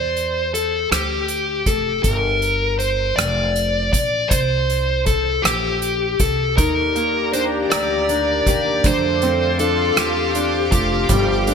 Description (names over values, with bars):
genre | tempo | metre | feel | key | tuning
six-eight pop ballad | 53 BPM (dotted quarters) | 6/8 | straight | unclear | A4 = 439 Hz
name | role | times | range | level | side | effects
dark smooth lead guitar | melody | 0.0-11.5 s | G4 to D5 | -19 LUFS | left 2 dB | overdrive, ping-pong delay
upright bass | bass | 0.0-11.5 s | F1 to F2 | -25 LUFS | equal | none
soft-mallet drum kit | drums | 0.2-11.5 s | hi-hat, kick drum, rim click | -21 LUFS | right 1 dB | gated reverb
bright concert grand piano | accompaniment | 6.6-11.5 s | D3 to G4 | -24 LUFS | right 1 dB | none
airy breathy pad | sustained chords | 6.6-11.5 s | G4 to D6 | -25 LUFS | equal | chorus
picked steel-string acoustic guitar | arpeggios | 6.6-11.5 s | Eb3 to G4 | -28 LUFS | right 7 dB | ensemble chorus
room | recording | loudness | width
light reverb | bright 1980s-style digital production | -16 LUFS | side -6 dB against mid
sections
0.0-11.5 A section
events
none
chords
0.0 Cadd9/E; 2.0 Gm7; 4.3 C5; 6.6 Ebmaj7; 8.8 Dm7/F